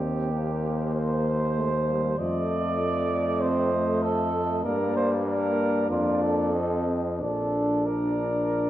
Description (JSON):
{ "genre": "classical, brass quintet", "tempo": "89-99 BPM", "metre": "4/4", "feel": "rubato", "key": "Bb major", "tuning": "A4 = 440 Hz", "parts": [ { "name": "mellow flugelhorn", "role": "second line", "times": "0.0-8.7 s", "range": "F4 to D5", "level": "-29 LUFS", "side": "right 4 dB", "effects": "none" }, { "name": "clear French horn", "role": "accompaniment", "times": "0.0-8.7 s", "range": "A3 to D4", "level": "-32 LUFS", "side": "left 3 dB", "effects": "none" }, { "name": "warm trombone", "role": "accompaniment", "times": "0.0-8.7 s", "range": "F3 to D4", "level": "-32 LUFS", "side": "right 2 dB", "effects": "none" }, { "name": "bright bass trombone", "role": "bass", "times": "0.0-8.7 s", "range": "Bb1 to G2", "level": "-28 LUFS", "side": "equal", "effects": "none" }, { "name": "dark cornet", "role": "melody", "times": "0.3-8.7 s", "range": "C5 to Eb5", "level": "-31 LUFS", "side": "left 4 dB", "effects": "none" } ], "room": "wet recital hall reverb, RT60 1.8 s", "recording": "worn, warbling old tape, cassette tape, warbly pitch drift", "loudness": "-23 LUFS", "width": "side -13 dB against mid", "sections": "0.0-8.7 A section", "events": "none", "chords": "0.0 Cm7/Eb; 2.2 F7; 4.6 Gm; 5.9 Bb/F; 6.5 F7; 7.2 Bb" }